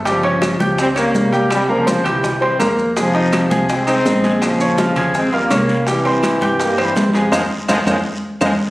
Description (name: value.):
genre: latin, salsa.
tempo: 165 BPM.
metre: 4/4.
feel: straight.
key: F minor.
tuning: A4 = 440 Hz.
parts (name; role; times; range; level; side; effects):
upright bass; bass; 0.0-8.5 s; G1 to G2; -25 LUFS; equal; none.
brilliant trombone section; melody; 0.1-8.5 s; C3 to C4; -18 LUFS; equal; plate reverb.
bright concert grand piano; accompaniment; 0.1-8.5 s; G3 to Ab6; -19 LUFS; equal; none.
bongos; percussion; 0.1-8.5 s; none; -25 LUFS; left 1 dB; none.
congas; percussion; 0.1-8.5 s; none; -22 LUFS; equal; none.
maracas; percussion; 0.1-8.5 s; none; -32 LUFS; equal; none.
timbales; percussion; 0.1-8.5 s; none; -26 LUFS; right 2 dB; none.
claves; percussion; 0.4-8.5 s; none; -29 LUFS; equal; none.
guiro; percussion; 3.0-8.5 s; none; -32 LUFS; equal; none.
room: moderate studio reverb, RT60 0.6 s.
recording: recorded on a phone in the room, studio reverb.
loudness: -14 LUFS.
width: side -19 dB against mid.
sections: 0.0-8.7 A section.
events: band accent 7.3-8.7; drum fill 8.0-8.7.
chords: 0.1 Gm7b5; 1.5 C7sus4; 2.2 C7; 3.0 Fm7; 4.4 Bbm7; 5.9 C; 7.3 Fm7.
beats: | 0.06 0.42 0.78 1.15 | 1.51 1.87 2.24 2.60 | 2.96 3.33 3.69 4.05 | 4.42 4.78 5.14 5.51 | 5.87 6.23 6.59 6.96 | 7.32 7.68 8.05 8.41.